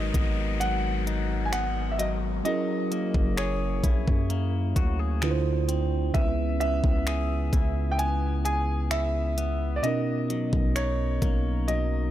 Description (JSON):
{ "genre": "contemporary R&B", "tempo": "65 BPM", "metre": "4/4", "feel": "straight", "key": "unclear", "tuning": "A4 = 440 Hz", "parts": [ { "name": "clear concert grand piano", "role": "melody", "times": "0.0-12.1 s", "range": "C#5 to G#5", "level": "-31 LUFS", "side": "right 1 dB", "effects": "ping-pong delay" }, { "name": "mellow tine electric piano", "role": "accompaniment", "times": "0.0-12.1 s", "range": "B2 to C5", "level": "-32 LUFS", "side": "right 6 dB", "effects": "none" }, { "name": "clean electric guitar", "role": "arpeggios", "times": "0.0-12.1 s", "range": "G#2 to G#4", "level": "-33 LUFS", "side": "left 9 dB", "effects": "spring reverb, ping-pong delay" }, { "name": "long sustained 808-style bass", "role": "bass", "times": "0.0-12.1 s", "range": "F#1 to F#2", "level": "-28 LUFS", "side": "equal", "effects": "none" }, { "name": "downlifter", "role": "sound effects", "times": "0.0-6.1 s", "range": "none", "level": "-40 LUFS", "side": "left 4 dB", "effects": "none" }, { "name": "trap drum kit", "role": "drums", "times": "0.1-11.9 s", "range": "finger snaps, hi-hat, kick drum", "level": "-26 LUFS", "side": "equal", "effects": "none" } ], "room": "little or no reverb", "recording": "none", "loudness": "-24 LUFS", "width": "side -12 dB against mid", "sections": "0.0-12.1 A section", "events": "none", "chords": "0.0 G#m7; 2.5 F#9; 5.2 Dm7; 6.1 C#m7; 9.8 Bmaj7", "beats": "0.61 1.53 | 2.45 3.38 4.30 5.22 | 6.15 7.07 7.99 8.92 | 9.84 10.76 11.69" }